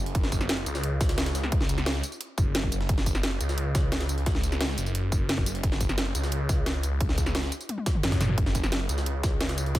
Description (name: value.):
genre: dark technical drum and bass.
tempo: 175 BPM.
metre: 4/4.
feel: straight.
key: unclear.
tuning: A4 = 439 Hz.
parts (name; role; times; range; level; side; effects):
phased detuned saw bass; bass; 0.0-9.8 s; F#1 to F#2; -28 LUFS; equal; phaser, tube saturation.
drum and bass drum kit; drums; 0.1-9.8 s; hi-hat, snare drum, tambourine, toms; -30 LUFS; equal; overdrive.
electronic kick drum; drums; 0.1-9.8 s; none; -27 LUFS; equal; none.
jungle sampler-style drum kit; drums; 0.1-9.8 s; hi-hat, snare drum; -38 LUFS; equal; high-pass filter on snare, high-pass filter on hats, high-pass filter on room.
room: digital ambience.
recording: none.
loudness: -24 LUFS.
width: side -15 dB against mid.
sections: 0.0-9.8 A section.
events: drum fill 7.7-8.4.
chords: none.